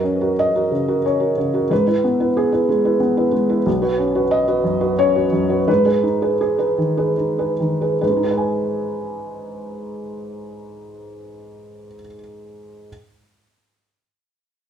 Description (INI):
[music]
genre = classical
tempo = 70-93 BPM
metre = 3/4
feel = rubato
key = G# minor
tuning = A4 = 444 Hz
[part]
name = felt-muted upright piano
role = accompaniment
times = 0.0-12.9 s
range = B1 to G#5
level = -18 LUFS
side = equal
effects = none
[sound]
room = moderate large studio reverb, RT60 0.8 s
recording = band playing live in one room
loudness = -16 LUFS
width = side -8 dB against mid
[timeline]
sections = 0.0-8.0 A section; 8.0-12.9 B section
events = slowing down 2.7-8.0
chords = 0.0 F#; 1.7 E/G#; 3.7 Badd9; 5.7 G#m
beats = 0.38 1.05 | 1.71 2.37 3.01 | 3.66 4.31 4.98 | 5.68 6.41 7.18 | 8.02 8.83 9.64 | 10.43 11.24 12.05